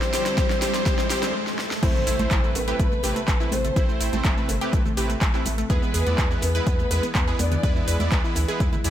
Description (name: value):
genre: progressive house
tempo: 124 BPM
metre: 4/4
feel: straight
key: A minor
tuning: A4 = 441 Hz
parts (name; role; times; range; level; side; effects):
- soft octave-layered synth lead; melody; 0.0-8.0 s; B4 to D5; -31 LUFS; left 3 dB; chorus, tremolo, sidechain pumping, ping-pong delay
- dark studio violin section; second line; 0.0-8.0 s; B4 to D5; -34 LUFS; left 1 dB; none
- warm analog pad; sustained chords; 0.0-8.9 s; C3 to B4; -36 LUFS; equal; chorus, sidechain pumping
- wide unison pluck; arpeggios; 0.0-8.9 s; A3 to B4; -31 LUFS; equal; sidechain pumping, ping-pong delay
- soft supersaw; stabs; 0.0-8.9 s; G3 to D5; -30 LUFS; right 2 dB; sidechain pumping, ping-pong delay
- round analog bass; bass; 0.0-8.9 s; G1 to E2; -27 LUFS; equal; sidechain pumping, high-pass filter
- deep house drum kit; drums; 0.0-8.9 s; crash cymbal, handclaps, hi-hat, shaker, snare drum; -30 LUFS; equal; overdrive, high-pass filter on snare, studio reverb, high-pass filter on hats, high-pass filter on perc, high-pass filter on cymbals
- riser and impact; sound effects; 0.0-3.8 s; none; -31 LUFS; right 1 dB; none
- electronic kick drum; drums; 0.4-8.7 s; none; -23 LUFS; equal; overdrive, studio reverb
- congas and bongos; percussion; 2.2-8.8 s; none; -34 LUFS; right 2 dB; sidechain pumping on perc
room: digital ambience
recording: none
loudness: -20 LUFS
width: side -11 dB against mid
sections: 0.0-1.8 A section; 1.8-8.9 B section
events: build-up 0.0-1.8; drum fill 0.0-1.3, 1.5-1.8; riser 0.0-1.8; filter sweep on synth pluck 0.0-1.8; stop 1.3-1.8; drop 1.8-8.9; impact 1.8-3.8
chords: 0.0 Dm; 1.8 Amadd9; 5.7 E